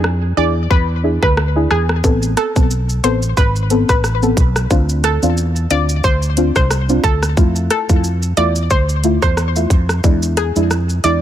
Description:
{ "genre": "dancehall", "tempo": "90 BPM", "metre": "4/4", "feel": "swing 56% on 16ths", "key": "A harmonic minor", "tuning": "A4 = 440 Hz", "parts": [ { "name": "mellow fretless electric bass", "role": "bass", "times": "0.0-11.2 s", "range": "G#1 to F2", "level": "-17 LUFS", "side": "equal", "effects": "none" }, { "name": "island pop drum kit", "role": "drums", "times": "0.0-11.2 s", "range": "hi-hat, kick drum, rim click, shaker", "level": "-17 LUFS", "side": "equal", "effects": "none" }, { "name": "analog pluck", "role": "melody", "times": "0.4-11.2 s", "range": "G#4 to D5", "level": "-20 LUFS", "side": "equal", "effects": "chorus, ping-pong delay" }, { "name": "deep mellow chord stab", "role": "accompaniment", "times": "0.4-11.2 s", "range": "G#3 to A4", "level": "-20 LUFS", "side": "left 1 dB", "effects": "chorus, sidechain pumping" } ], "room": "little or no reverb", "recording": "none", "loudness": "-13 LUFS", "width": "side -11 dB against mid", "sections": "0.0-11.2 A section", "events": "break 0.0-2.0", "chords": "0.0 E7; 2.0 Amadd9; 4.7 Dm7; 7.4 Fmaj7; 10.0 E7" }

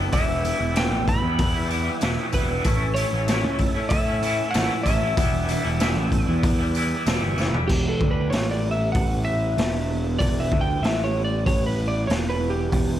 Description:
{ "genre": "psychedelic rock", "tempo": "95 BPM", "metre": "4/4", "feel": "straight", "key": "E dorian", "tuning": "A4 = 438 Hz", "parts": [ { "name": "tonewheel organ", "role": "sustained chords", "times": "0.0-13.0 s", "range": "G3 to E6", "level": "-35 LUFS", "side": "right 5 dB", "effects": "slow rotary speaker, chorus vibrato" }, { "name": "twangy electric guitar", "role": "riff", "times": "0.0-13.0 s", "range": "E2 to A4", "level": "-27 LUFS", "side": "equal", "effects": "harmonic tremolo, double-tracked left and right" }, { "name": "fuzz picked electric bass", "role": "bass", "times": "0.0-13.0 s", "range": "E1 to A2", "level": "-26 LUFS", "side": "equal", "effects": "overdrive" }, { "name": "electric slide guitar", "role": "melody", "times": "0.1-13.0 s", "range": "G4 to B5", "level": "-28 LUFS", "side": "equal", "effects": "slapback echo" }, { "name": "raw garage drum kit", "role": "drums", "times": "0.1-12.9 s", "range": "crash cymbal, hi-hat, kick drum, snare drum, toms", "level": "-25 LUFS", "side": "equal", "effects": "none" }, { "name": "tambourine", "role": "percussion", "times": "0.1-7.5 s", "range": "none", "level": "-41 LUFS", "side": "left 12 dB", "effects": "none" } ], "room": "light reverb, small room reverb", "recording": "none", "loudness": "-20 LUFS", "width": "side -12 dB against mid", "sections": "0.0-7.7 A section; 7.7-13.0 B section", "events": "drum fill 7.4-7.7; electric slide guitar solo 7.7-13.0", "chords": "0.1 Em; 2.7 A; 5.2 Em" }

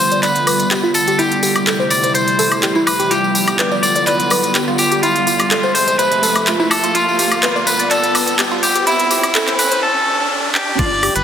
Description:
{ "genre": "progressive house", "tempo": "125 BPM", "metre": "4/4", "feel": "straight", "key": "G mixolydian", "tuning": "A4 = 440 Hz", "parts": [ { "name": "electric guitar at the edge of break-up", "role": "melody", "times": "0.0-11.2 s", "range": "E4 to D5", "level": "-17 LUFS", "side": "equal", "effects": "tape echo" }, { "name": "evolving wavetable pad", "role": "sustained chords", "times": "0.0-11.2 s", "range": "C3 to E5", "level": "-22 LUFS", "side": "equal", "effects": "chorus, built-in reverb, sidechain pumping" }, { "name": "round analog bass", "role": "bass", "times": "0.0-11.2 s", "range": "none", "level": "barely audible", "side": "none", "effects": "none" }, { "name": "riser", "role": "sound effects", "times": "0.0-10.8 s", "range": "none", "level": "-24 LUFS", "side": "right 1 dB", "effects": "none" }, { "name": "glassy wavetable pluck", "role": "arpeggios", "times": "0.1-11.1 s", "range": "E4 to G5", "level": "-20 LUFS", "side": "equal", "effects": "chorus, sidechain pumping, tape echo" }, { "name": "pop drum kit", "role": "drums", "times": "0.1-11.2 s", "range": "crash cymbal, handclaps, hi-hat, woodblock", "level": "-18 LUFS", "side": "equal", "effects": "studio reverb" }, { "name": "tambourine", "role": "percussion", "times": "0.1-9.8 s", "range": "none", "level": "-24 LUFS", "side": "left 2 dB", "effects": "none" }, { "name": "electronic kick drum", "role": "drums", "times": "10.8-10.9 s", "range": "none", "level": "-19 LUFS", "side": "equal", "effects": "studio reverb" } ], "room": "moderate digital room reverb, RT60 1.3 s", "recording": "dense, heavily limited modern master, high-pass filter", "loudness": "-12 LUFS", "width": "side -8 dB against mid", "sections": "0.0-10.8 A section", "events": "build-up 0.0-10.8; riser 0.0-10.8; filter sweep on synth arpeggio sound 0.0-10.8; filter sweep on ambient pad 0.0-10.8; break 9.8-10.8; drum fill 10.6", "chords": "0.0 G7; 1.2 C6; 3.1 G7; 5.0 Fmaj7; 7.0 G7; 8.9 C6" }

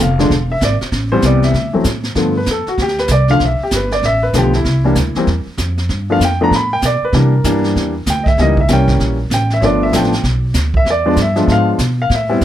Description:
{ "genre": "jazz piano trio", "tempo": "193 BPM", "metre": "4/4", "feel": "swing 63% on 8ths", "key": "G mixolydian", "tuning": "A4 = 442 Hz", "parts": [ { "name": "warm baby grand piano", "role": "melody", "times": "0.0-12.4 s", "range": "C3 to B5", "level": "-15 LUFS", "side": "left 1 dB", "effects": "none" }, { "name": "upright bass", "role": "bass", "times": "0.0-12.4 s", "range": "E1 to C3", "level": "-16 LUFS", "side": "equal", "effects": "none" }, { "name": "jazz brush drum kit", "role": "drums", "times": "0.2-12.4 s", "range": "brushed snare drum, hi-hat, kick drum, snare drum", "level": "-20 LUFS", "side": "right 2 dB", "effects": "none" } ], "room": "light reverb", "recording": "none", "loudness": "-12 LUFS", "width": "side -12 dB against mid", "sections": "0.0-2.2 A section; 2.2-12.4 B section", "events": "grand piano solo 2.2-12.4", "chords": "0.3 E; 0.9 Am7; 1.5 Dsus2; 2.2 G7; 4.7 C; 5.9 G7; 7.1 C7; 8.4 C#dim7; 9.6 G7; 10.9 E7b9" }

